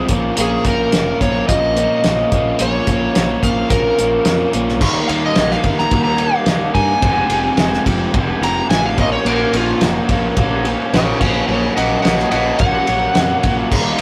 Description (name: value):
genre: classic rock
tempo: 108 BPM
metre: 4/4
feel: straight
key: Bb minor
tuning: A4 = 440 Hz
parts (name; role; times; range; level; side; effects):
- overdriven slide guitar; melody; 0.0-13.7 s; F4 to Bb5; -20 LUFS; equal; none
- crunchy overdriven guitar; riff; 0.0-14.0 s; F2 to Eb4; -21 LUFS; equal; none
- growling fingered electric bass; bass; 0.1-14.0 s; F1 to G2; -26 LUFS; equal; overdrive
- cloth-damped thuddy drum kit; drums; 0.1-14.0 s; crash cymbal, hi-hat, kick drum, ride cymbal, snare drum; -21 LUFS; equal; none
room: moderate small room reverb, RT60 0.5 s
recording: rough rehearsal-room recording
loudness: -16 LUFS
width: mono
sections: 0.0-4.8 A section; 4.8-14.0 B section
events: electric slide guitar solo 4.8-14.0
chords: 0.1 Bbm; 4.8 Eb; 7.0 Fm; 9.0 Bbm; 11.2 Gb/Bb